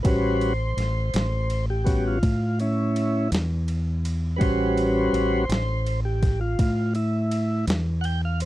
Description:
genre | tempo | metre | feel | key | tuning
slow blues | 55 BPM (dotted quarters) | 12/8 | straight | unclear | A4 = 440 Hz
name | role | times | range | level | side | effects
tonewheel organ | sustained chords | 0.0-8.5 s | G3 to G5 | -25 LUFS | equal | slow rotary speaker
deep dub fingered electric bass | bass | 0.0-8.5 s | A1 to A2 | -24 LUFS | equal | none
boom bap sampler-style drum kit | drums | 0.0-8.5 s | kick drum, ride cymbal, snare drum | -26 LUFS | equal | overdrive
room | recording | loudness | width
little or no reverb | dry, close 1970s-style studio recording | -21 LUFS | side -15 dB against mid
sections
0.0-8.5 A section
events
tonewheel organ solo 0.0-8.5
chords
0.0 A13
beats
| 0.05 1.14 2.23 3.32 | 4.41 5.50 6.59 7.68

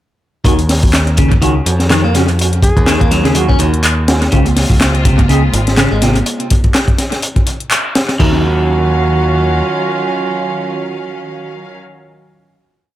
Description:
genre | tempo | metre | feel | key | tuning
breakbeat, breaks | 124 BPM | 4/4 | swing 56% on 16ths | Eb dorian | A4 = 441 Hz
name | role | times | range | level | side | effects
modern bright picked electric bass | bass | 0.4-9.6 s | Ab1 to F2 | -14 LUFS | equal | none
crunchy breakbeat drum kit | drums | 0.4-8.3 s | crash cymbal, hi-hat, kick drum, snare drum | -14 LUFS | equal | tape echo
electric guitar at the edge of break-up | riff | 0.5-8.4 s | C3 to Db4 | -17 LUFS | left 1 dB | tube saturation, vintage 12-bit sampler grit, tape echo
dark brass ensemble | stabs | 0.5-11.8 s | C4 to Ab4 | -20 LUFS | right 4 dB | vintage 12-bit sampler grit, tape echo
house drum kit | drums | 0.5-8.2 s | handclaps, hi-hat | -19 LUFS | left 1 dB | tape echo
breathy alto saxophone | melody | 2.6-3.4 s | Ab4 | -22 LUFS | equal | small speaker sound, tape echo
rich symphonic string section | sustained chords | 4.3-11.8 s | Eb3 to F5 | -23 LUFS | equal | sidechain pumping
congas | percussion | 4.5-6.1 s | none | -22 LUFS | right 2 dB | tape echo
room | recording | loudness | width
light reverb | echo-heavy mix | -10 LUFS | side -13 dB against mid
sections
0.5-8.2 drop; 8.2-12.1 final chord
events
drop 0.5-8.2; band accent 7.7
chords
0.5 Ebm9; 4.3 Dbmaj7; 8.2 Ebm9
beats
| 0.45 0.94 1.42 1.90 | 2.39 2.87 3.36 3.84 | 4.32 4.81 5.29 5.78 | 6.26 6.74 7.23 7.71 | 8.19 8.68 9.16 9.65 | 10.13 10.61 11.10 11.58

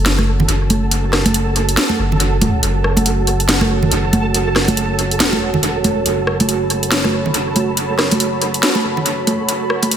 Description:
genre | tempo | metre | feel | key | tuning
deep dubstep | 140 BPM | 4/4 | swing 60% on 16ths, half-time | F# minor | A4 = 440 Hz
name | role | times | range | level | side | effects
dark analog pad | sustained chords | 0.0-10.0 s | F#4 to B5 | -22 LUFS | right 2 dB | chorus
saturated sub bass | bass | 0.0-10.0 s | E1 to F#1 | -20 LUFS | equal | none
flickering grainy texture | texture | 0.0-10.0 s | A4 | -24 LUFS | right 3 dB | built-in reverb
garage drum kit | drums | 0.1-10.0 s | hi-hat, rim click, snare drum | -18 LUFS | equal | small room ambience, dub echo
congas | percussion | 0.2-9.9 s | none | -20 LUFS | right 2 dB | dub echo
room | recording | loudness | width
light reverb, digital ambience | echo-heavy mix, high-pass filter | -14 LUFS | side -9 dB against mid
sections
0.0-10.0 A section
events
build-up 0.0-10.0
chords
0.0 F#m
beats
0.06 0.49 | 0.92 1.34 1.77 2.20 | 2.63 3.06 3.49 3.92 | 4.34 4.77 5.20 5.63 | 6.06 6.49 6.92 7.34 | 7.77 8.20 8.63 9.06 | 9.49 9.91

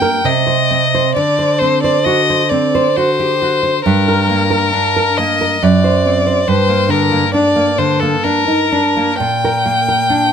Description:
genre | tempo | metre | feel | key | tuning
romantic duo for violin and classical guitar | 67 BPM | 3/4 | rubato | G minor | A4 = 440 Hz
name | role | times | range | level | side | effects
clear violin | melody | 0.0-10.3 s | A4 to G5 | -15 LUFS | left 4 dB | none
nylon-string guitar | accompaniment | 0.0-10.3 s | F#2 to C5 | -14 LUFS | right 3 dB | none
room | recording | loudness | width
light reverb | close, detailed microphones | -11 LUFS | side -7 dB against mid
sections
0.0-10.3 A section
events
none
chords
0.2 N.C.; 1.2 D7; 3.8 Gm; 5.6 D7/F#; 6.5 Gm; 9.2 Gm/Bb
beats
0.25 | 1.16 2.06 2.96 | 3.85 4.73 5.61 | 6.48 7.33 8.24 | 9.20 10.11

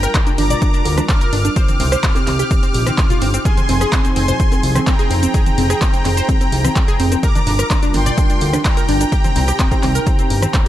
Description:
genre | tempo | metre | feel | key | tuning
progressive house | 127 BPM | 4/4 | straight | F dorian | A4 = 443 Hz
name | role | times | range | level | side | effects
soft supersaw | melody | 0.0-10.7 s | G5 to F6 | -22 LUFS | equal | sidechain pumping, ping-pong delay
airy breathy pad | sustained chords | 0.0-10.7 s | C3 to Bb4 | -26 LUFS | equal | chorus, sidechain pumping
analog pluck | arpeggios | 0.0-10.6 s | C4 to D5 | -22 LUFS | right 1 dB | chorus, sidechain pumping, tape echo
fat analog bass | bass | 0.0-10.5 s | F1 to D2 | -17 LUFS | equal | sidechain pumping
deep house drum kit | drums | 0.0-10.6 s | cabasa, handclaps, hi-hat, rim click | -24 LUFS | equal | overdrive
electronic kick drum | drums | 0.1-10.6 s | none | -16 LUFS | equal | overdrive
bongos and congas | percussion | 0.1-10.5 s | none | -27 LUFS | right 2 dB | sidechain pumping on perc
room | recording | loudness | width
digital ambience | lossy compression artefacts | -13 LUFS | side -13 dB against mid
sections
0.0-10.7 A section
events
none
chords
0.0 Gm7; 1.6 Cm; 3.5 Fm7; 7.2 Gm7; 9.1 Cm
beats
0.15 0.62 1.09 | 1.56 2.04 2.51 2.98 | 3.45 3.92 4.40 4.87 | 5.34 5.82 6.29 6.76 | 7.23 7.71 8.18 8.65 | 9.12 9.60 10.07 10.54

